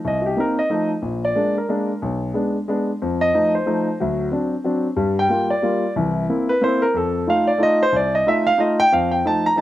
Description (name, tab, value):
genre	jazz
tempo	183 BPM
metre	3/4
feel	swing 62% on 8ths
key	F mixolydian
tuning	A4 = 440 Hz
part	warm grand piano	solo	0.0-9.6 s	Bb1 to Bb5	-17 LUFS	equal	slapback echo
room	light reverb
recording	recorded outdoors, with no room sound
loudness	-17 LUFS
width	side -14 dB against mid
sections	0.0-8.9 A section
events	grand piano solo 0.0-9.6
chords	0.0 Cm7; 0.7 F7; 1.0 Bb7; 2.0 Bm6; 3.0 F7; 4.0 D7; 5.0 Gm7; 6.0 C7; 6.9 F7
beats	| 0.04 0.36 0.69 | 1.02 1.35 1.68 | 2.01 2.34 2.67 | 3.00 3.33 3.65 | 3.98 4.31 4.64 | 4.97 5.30 5.62 | 5.95 6.28 6.61 | 6.94 7.27 7.60 | 7.92 8.25 8.58 | 8.91 9.24 9.57